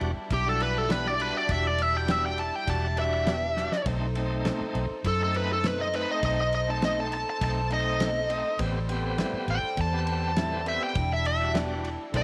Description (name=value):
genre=straight-eighth soul blues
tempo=101 BPM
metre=4/4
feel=straight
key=E minor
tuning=A4 = 439 Hz
part: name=overdriven tonewheel organ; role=accompaniment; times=0.0-12.2 s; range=G3 to G4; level=-38 LUFS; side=equal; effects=slow rotary speaker
part: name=rich chamber string section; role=sustained chords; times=0.0-12.2 s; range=G3 to C5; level=-39 LUFS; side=equal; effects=none
part: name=vintage muted fingered electric bass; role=bass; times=0.0-12.2 s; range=E1 to F#2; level=-33 LUFS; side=equal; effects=none
part: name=warm soul drum kit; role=drums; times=0.0-12.2 s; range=kick drum, ride cymbal, snare drum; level=-38 LUFS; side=equal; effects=none
part: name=smooth overdriven lead guitar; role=melody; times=0.3-12.2 s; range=G4 to A5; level=-30 LUFS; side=equal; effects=none
part: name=direct-recorded clean electric guitar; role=stabs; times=0.9-11.7 s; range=A2 to G4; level=-39 LUFS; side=equal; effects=spring reverb, tape echo
room=light reverb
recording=none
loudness=-27 LUFS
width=mono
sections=0.0-12.2 A section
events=lead electric guitar solo 0.0-12.2; drum fill 3.6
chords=0.0 Em7; 3.9 B7b9; 8.6 Am7; 11.0 Em7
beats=0.31 0.90 | 1.49 2.08 2.68 3.27 | 3.86 4.45 5.04 5.64 | 6.23 6.82 7.41 8.00 | 8.59 9.19 9.78 10.37 | 10.96 11.55 12.14